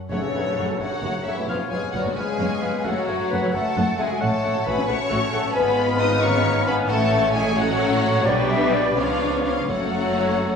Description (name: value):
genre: classical, dramatic, fast romantic movement for symphony orchestra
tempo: 80-92 BPM (dotted quarters)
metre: 6/8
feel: rubato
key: F# minor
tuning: A4 = 441 Hz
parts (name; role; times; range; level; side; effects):
- warm symphonic violin section; melody; 0.1-10.6 s; B4 to D#6; -30 LUFS; left 2 dB; none
- mellow cor anglais; second line; 0.1-10.6 s; C#5 to F#5; -32 LUFS; right 1 dB; none
- mellow small flute group; second line; 0.1-10.6 s; G4 to Cb6; -30 LUFS; left 1 dB; none
- warm clarinet; second line; 0.1-10.6 s; A4 to E5; -28 LUFS; left 2 dB; none
- warm symphonic violin section; second line; 0.1-10.6 s; B3 to D#5; -31 LUFS; left 3 dB; none
- mellow bassoon; accompaniment; 0.1-10.6 s; G3 to B3; -32 LUFS; right 1 dB; none
- warm symphonic viola section; accompaniment; 0.1-10.6 s; C#3 to F#4; -28 LUFS; equal; none
- mellow French horn section; sustained chords; 0.1-10.6 s; B2 to D#4; -26 LUFS; left 4 dB; none
- warm symphonic cello section; bass; 0.1-10.6 s; F#2 to C#3; -29 LUFS; right 1 dB; none
- warm symphonic double bass section; bass; 0.1-10.6 s; F#1 to C#2; -29 LUFS; right 2 dB; none
- tam-tam; percussion; 0.1-1.9 s; none; -37 LUFS; left 1 dB; none
room: wet scoring stage reverb, RT60 1.6 s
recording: studio reverb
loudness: -19 LUFS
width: side -6 dB against mid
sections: 0.1-10.6 A section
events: band accent 0.1-0.6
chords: 0.1 F#m; 1.5 C#7/F#; 2.9 F#m; 4.2 F#m/A; 5.5 Fdim/Ab; 6.9 F#m/A; 8.3 G/B; 9.0 C#7b9; 9.7 F#m